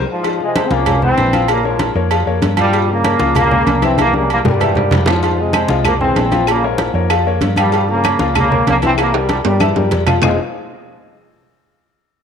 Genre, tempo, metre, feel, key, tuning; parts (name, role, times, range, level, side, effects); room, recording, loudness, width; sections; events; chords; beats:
latin, salsa; 192 BPM; 4/4; straight; F harmonic minor; A4 = 441 Hz
mellow trombone section; melody; 0.0-10.4 s; Ab2 to Db4; -17 LUFS; right 1 dB
warm baby grand piano; accompaniment; 0.0-10.4 s; E3 to F5; -20 LUFS; left 9 dB
hollow-body short-scale fingered electric bass; bass; 0.0-10.4 s; F1 to G2; -19 LUFS; right 1 dB
agogo bells and timbales; percussion; 0.2-10.3 s; -21 LUFS; right 13 dB
congas; percussion; 0.2-10.3 s; -20 LUFS; equal
cowbell and bongos; percussion; 0.2-10.3 s; -24 LUFS; left 11 dB
claves; percussion; 5.5-10.3 s; -24 LUFS; left 11 dB
moderate echo chamber reverb, RT60 1.7 s, small room ambience; 1960s-style stereo with parts hard left and right; -12 LUFS; side -7 dB against mid
0.2-10.2 A section; 10.2-11.5 B section
drum fill 0.0, 4.0-5.2, 9.0-10.2; band accent 0.0
0.2 Fm; 1.5 Bbm; 2.7 Gm7b5; 4.0 C7; 5.2 Fm; 6.5 Bbm; 7.7 Gm7b5; 9.0 C7; 10.2 F5
| 0.24 0.55 0.86 1.17 | 1.48 1.80 2.11 2.42 | 2.73 3.04 3.36 3.67 | 3.98 4.29 4.60 4.92 | 5.23 5.54 5.85 6.17 | 6.48 6.79 7.10 7.41 | 7.73 8.04 8.35 8.66 | 8.98 9.29 9.60 9.91 | 10.22